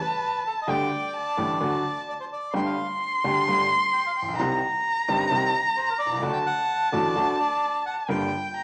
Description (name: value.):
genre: tango.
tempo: 130 BPM.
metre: 4/4.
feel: rubato.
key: G minor.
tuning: A4 = 440 Hz.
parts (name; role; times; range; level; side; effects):
bandoneon; melody; 0.0-8.6 s; A4 to C6; -33 LUFS; equal; none.
warm violin; second line; 0.0-8.6 s; G5 to C6; -27 LUFS; equal; none.
bright upright piano; accompaniment; 0.7-8.3 s; G1 to G4; -30 LUFS; equal; none.
room: moderate large studio reverb, RT60 1.2 s.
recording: none.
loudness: -25 LUFS.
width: mono.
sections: 0.0-8.6 A section.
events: none.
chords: 0.0 N.C.; 0.7 Dsus4; 1.6 D; 2.5 Gsus2; 4.4 Cm; 6.2 D; 8.1 Gm7.